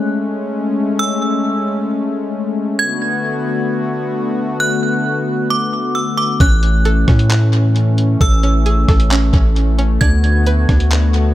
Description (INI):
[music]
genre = hip hop, atmospheric cloud-rap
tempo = 133 BPM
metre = 4/4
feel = half-time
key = A major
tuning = A4 = 440 Hz
[part]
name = metallic FM bell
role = melody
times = 0.0-10.9 s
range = D6 to G#6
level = -21 LUFS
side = right 2 dB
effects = chorus, tape echo
[part]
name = warm analog pad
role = sustained chords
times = 0.0-11.3 s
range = D3 to F#4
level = -18 LUFS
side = left 2 dB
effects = chorus
[part]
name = string-like resonator pluck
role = arpeggios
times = 6.4-11.3 s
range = C#4 to B4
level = -25 LUFS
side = right 4 dB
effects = chorus, tape echo
[part]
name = long sustained 808-style bass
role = bass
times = 6.4-11.3 s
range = A1 to A2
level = -13 LUFS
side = equal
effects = none
[part]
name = lo-fi sampler-style drum kit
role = drums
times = 6.4-11.2 s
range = handclaps, hi-hat, kick drum, rim click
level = -15 LUFS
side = equal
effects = none
[sound]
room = little or no reverb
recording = echo-heavy mix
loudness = -13 LUFS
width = side -14 dB against mid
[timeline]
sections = 0.0-11.3 A section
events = none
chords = 0.0 Amaj7; 2.8 D6; 6.4 Amaj7; 10.0 D6